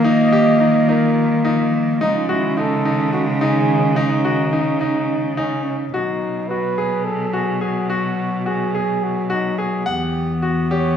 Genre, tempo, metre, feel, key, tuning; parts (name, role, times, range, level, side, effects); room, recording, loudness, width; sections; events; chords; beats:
contemporary instrumental, chamber music in an uneven meter; 214 BPM (eighths); 7/8; straight; A4 = 440 Hz
mellow flugelhorn; melody; 0.0-11.0 s; C#4 to D#5; -23 LUFS; right 3 dB
dark clarinet; second line; 0.0-11.0 s; F#3 to B3; -21 LUFS; left 1 dB
warbly tape-like pad; sustained chords; 0.0-5.9 s; C#3 to E#4; -25 LUFS; equal; chorus, built-in reverb, phaser
bright concert grand piano; arpeggios; 0.0-11.0 s; D#4 to F#5; -23 LUFS; left 2 dB
rich cello; bass; 0.0-11.0 s; E2 to D#3; -24 LUFS; right 2 dB
wet recital hall reverb, RT60 1.6 s; studio reverb; -16 LUFS; side -8 dB against mid
0.0-5.9 A section; 5.9-11.0 B section
0.0 D#add9; 2.0 C#sus2; 5.9 B; 9.9 Emadd9
| 0.05 0.33 0.61 0.89 1.17 1.45 1.73 | 2.01 2.29 2.57 2.85 3.13 3.41 3.69 | 3.97 4.25 4.54 4.82 5.10 5.38 5.66 | 5.94 6.22 6.50 6.78 7.06 7.34 7.62 | 7.91 8.19 8.47 8.75 9.03 9.31 9.59 | 9.87 10.15 10.44 10.72